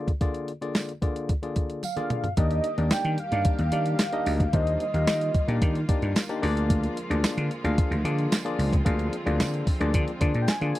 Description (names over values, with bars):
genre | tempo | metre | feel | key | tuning
early-eighties boogie funk | 111 BPM | 4/4 | straight | unclear | A4 = 440 Hz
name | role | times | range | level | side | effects
barky tine electric piano | accompaniment | 0.0-10.8 s | D3 to F5 | -30 LUFS | left 3 dB | none
crisp 8-bit digital drum machine | drums | 0.1-10.8 s | hi-hat, kick drum, snare drum, toms | -25 LUFS | equal | none
tambourine | percussion | 0.8-10.6 s | none | -38 LUFS | right 14 dB | none
warm velvety synth lead | melody | 1.8-5.9, 10.4-10.8 s | Eb5 to Ab5 | -29 LUFS | right 1 dB | chorus
rich studio string section | sustained chords | 2.4-10.8 s | D3 to G4 | -36 LUFS | right 1 dB | none
vintage slap bass | bass | 2.4-10.7 s | Db2 to Eb3 | -26 LUFS | equal | none
room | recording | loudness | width
little or no reverb | dry, close 1970s-style studio recording | -23 LUFS | side -15 dB against mid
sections
0.0-2.4 A section; 2.4-10.8 B section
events
drum fill 1.8-2.4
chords
0.0 Bb7/D; 2.4 Ebmaj7; 6.4 Bb7